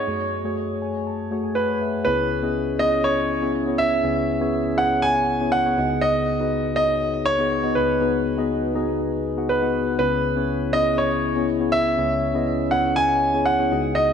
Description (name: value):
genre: pop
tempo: 121 BPM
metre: 4/4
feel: straight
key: C# minor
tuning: A4 = 441 Hz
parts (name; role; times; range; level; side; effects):
- warm baby grand piano; melody; 0.0-14.1 s; B4 to G#5; -22 LUFS; right 1 dB; ping-pong delay
- mellow tine electric piano; accompaniment; 0.0-14.1 s; C#2 to A5; -22 LUFS; left 2 dB; lush chorus
room: wet lush hall reverb, RT60 2.4 s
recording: dark, warm production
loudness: -19 LUFS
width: side -7 dB against mid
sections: 0.0-2.1 A section; 2.1-14.1 B section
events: tine electric piano fill 0.6-2.1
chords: 0.1 F#madd9; 2.1 C#m7; 5.8 G#m7/C#; 10.0 C#m7